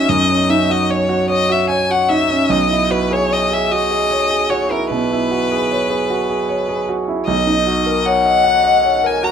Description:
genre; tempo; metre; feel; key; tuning
classical, impressionist duo for violin and grand piano; 50 BPM (dotted quarters); 12/8; rubato; unclear; A4 = 440 Hz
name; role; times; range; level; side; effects
clear violin; melody; 0.0-9.3 s; A#4 to A#5; -17 LUFS; left 4 dB; none
clear concert grand piano; accompaniment; 0.0-9.3 s; B1 to F#5; -17 LUFS; right 2 dB; none
room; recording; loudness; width
light reverb; minimal, uncompressed stereo recording; -14 LUFS; side -7 dB against mid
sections
0.0-9.3 A section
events
none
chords
0.0 Badd9; 2.5 E69/B; 7.3 Bmaj9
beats
0.09 1.29 | 2.50 3.70 4.90 6.10 | 7.27 8.45

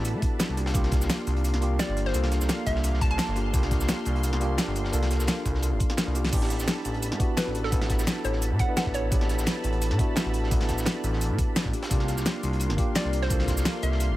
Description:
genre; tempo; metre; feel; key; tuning
liquid drum and bass; 172 BPM; 4/4; swing 53% on 16ths; unclear; A4 = 440 Hz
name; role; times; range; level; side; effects
tine electric piano; accompaniment; 0.0-14.2 s; Bb3 to B4; -32 LUFS; equal; fast stereo tremolo, digital delay
warm analog pad; sustained chords; 0.0-14.2 s; Bb3 to C6; -36 LUFS; left 1 dB; chorus, sidechain pumping
smooth synth bass; bass; 0.0-14.2 s; G1 to A2; -27 LUFS; equal; none
crunchy breakbeat drum kit; drums; 0.0-14.1 s; hi-hat, snare drum; -38 LUFS; equal; high-pass filter on hats, high-pass filter on snare, high-pass filter on room
pop drum kit; drums; 0.0-14.1 s; cabasa, crash cymbal, hi-hat, snare drum; -30 LUFS; equal; none
electronic kick drum; drums; 0.2-13.6 s; none; -26 LUFS; equal; none
hollow square pluck; melody; 1.8-3.5, 7.4-9.3, 13.0-14.0 s; A4 to A5; -34 LUFS; equal; chorus, digital delay
room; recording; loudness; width
little or no reverb; none; -23 LUFS; side -16 dB against mid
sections
0.0-6.3 A section; 6.3-14.2 A section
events
drop 0.0-6.3, 6.3-14.2; drum fill 6.0-6.3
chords
0.0 A9sus4; 0.6 C9sus4; 6.3 A9sus4; 11.7 C9sus4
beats
0.05 0.40 | 0.75 1.09 1.44 1.79 | 2.14 2.49 2.84 3.19 | 3.54 3.89 4.24 4.58 | 4.93 5.28 5.63 5.98 | 6.33 6.68 7.03 7.37 | 7.72 8.07 8.42 8.77 | 9.12 9.47 9.82 10.16 | 10.51 10.86 11.21 11.56 | 11.91 12.26 12.61 12.96 | 13.30 13.65 14.00

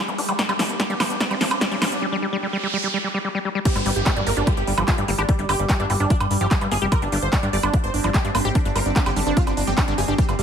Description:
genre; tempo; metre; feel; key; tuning
psychedelic trance; 147 BPM; 4/4; straight; unclear; A4 = 440 Hz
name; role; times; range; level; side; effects
overtone-sweeping drone; sustained chords; 0.0-10.4 s; G3 to G4; -30 LUFS; left 1 dB; chorus, built-in reverb, sidechain pumping
overdriven acid bass; riff; 0.0-10.4 s; F3 to G4; -27 LUFS; moving between left 5 dB and right 5 dB; auto-pan, sidechain pumping, ping-pong delay
riser, noise sweep and downlifter; sound effects; 0.1-6.9 s; none; -30 LUFS; right 1 dB; none
fat analog bass; bass; 0.1-10.4 s; F1 to G2; -25 LUFS; equal; high-pass filter
big-room dance drum kit; drums; 0.1-10.4 s; crash cymbal, handclaps, hi-hat, snare drum, woodblock; -25 LUFS; right 1 dB; overdrive
electronic kick drum; drums; 0.4-10.3 s; none; -20 LUFS; equal; overdrive, high-pass filter on kick
supersaw stab; melody; 3.7-10.4 s; G3 to D5; -26 LUFS; right 2 dB; phaser, sidechain pumping, ping-pong delay
room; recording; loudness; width
light reverb; none; -19 LUFS; side -8 dB against mid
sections
0.0-3.7 A section; 3.7-10.4 B section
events
build-up 0.0-3.7; drum fill 0.0-2.0; filter sweep on acid bass 0.0-3.7; riser 0.1-2.0; break 2.0-3.7; noise sweep 2.0-3.7; drop 3.7-10.4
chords
0.0 G5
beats
| 0.39 0.80 1.21 1.61 | 2.02 2.43 2.84 3.25 | 3.65 4.06 4.47 4.88 | 5.29 5.70 6.10 6.51 | 6.92 7.33 7.74 8.14 | 8.55 8.96 9.37 9.78 | 10.18

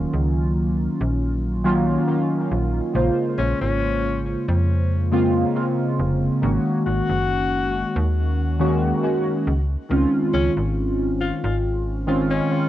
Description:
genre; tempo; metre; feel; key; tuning
vaporwave; 69 BPM; 4/4; straight; unclear; A4 = 442 Hz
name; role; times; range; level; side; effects
warbly lo-fi synth keys; accompaniment; 0.0-12.7 s; Db3 to C5; -21 LUFS; equal; phaser, analog chorus, cassette tape, tape echo
slap-like FM bass; bass; 0.0-12.4 s; F1 to F2; -23 LUFS; equal; none
bright alto saxophone; melody; 3.4-12.7 s; Db4 to Gb4; -27 LUFS; left 5 dB; vintage 12-bit sampler grit, cassette tape, tape echo
room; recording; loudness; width
light reverb, small room ambience; home recording on cassette; -19 LUFS; side -13 dB against mid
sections
0.0-2.9 A section; 2.9-12.7 B section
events
none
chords
0.0 Ebm7; 2.9 Bbm9; 6.4 Ab9sus4; 9.5 Dbmaj7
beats
0.34 1.21 2.08 | 2.95 3.82 4.69 5.56 | 6.43 7.30 8.16 9.04 | 9.90 10.77 11.64 12.51

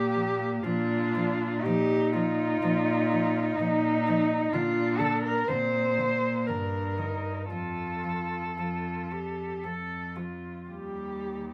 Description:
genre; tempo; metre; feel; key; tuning
classical, lyrical piece for cello ensemble; 55-64 BPM; 3/4; rubato; Bb major; A4 = 440 Hz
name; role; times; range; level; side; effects
muted cello; melody; 0.0-11.5 s; Eb4 to C5; -31 LUFS; equal; none
muted cello; second line; 0.0-10.7 s; Bb3 to A4; -35 LUFS; equal; none
muted cello; bass; 0.0-11.5 s; Eb2 to Bb2; -34 LUFS; equal; none
muted cello; accompaniment; 0.1-11.5 s; D3 to G3; -38 LUFS; equal; none
room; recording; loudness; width
light reverb; none; -28 LUFS; mono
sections
0.0-11.5 A section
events
none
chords
0.0 Bb; 6.5 Gm; 7.5 F; 10.7 Eb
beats
0.64 | 1.64 2.62 3.59 | 4.53 5.49 6.48 | 7.50 8.58 9.64 | 10.70

